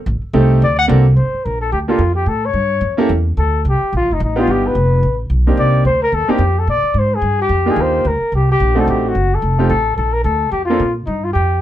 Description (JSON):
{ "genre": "jazz, small-group swing and bop", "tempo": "218 BPM", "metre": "4/4", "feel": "swing 59% on 8ths", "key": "G minor", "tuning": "A4 = 440 Hz", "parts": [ { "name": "upright bass", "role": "bass", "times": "0.1-11.6 s", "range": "F1 to Bb2", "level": "-16 LUFS", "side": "equal", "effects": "none" }, { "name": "clear grand piano", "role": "accompaniment", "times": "0.3-10.8 s", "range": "A3 to A4", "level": "-17 LUFS", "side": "right 2 dB", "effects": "none" }, { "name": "dark trumpet", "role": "melody", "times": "0.6-11.6 s", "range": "Eb4 to F#5", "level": "-17 LUFS", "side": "left 2 dB", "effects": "none" } ], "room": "light reverb", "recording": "dark, warm production", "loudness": "-13 LUFS", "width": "side -12 dB against mid", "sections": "0.0-1.2 A section; 1.2-10.0 B section; 10.0-11.6 C section", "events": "trumpet solo 0.0-1.2", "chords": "0.1 Am7b5; 0.6 D7b13; 1.2 Gm7; 2.3 A7; 3.4 G7b13; 5.6 Cm7; 6.7 Bb6; 7.8 Ebmaj7; 8.9 D7b9; 9.4 F7; 10.0 Bbmaj7; 11.1 Ebadd9", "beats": "| 0.07 0.34 0.62 0.89 | 1.17 1.44 1.72 2.00 | 2.27 2.55 2.82 3.10 | 3.37 3.65 3.92 4.20 | 4.47 4.75 5.03 5.30 | 5.58 5.85 6.13 6.40 | 6.68 6.95 7.23 7.50 | 7.78 8.05 8.33 8.60 | 8.88 9.15 9.43 9.71 | 9.98 10.26 10.53 10.81 | 11.08 11.36" }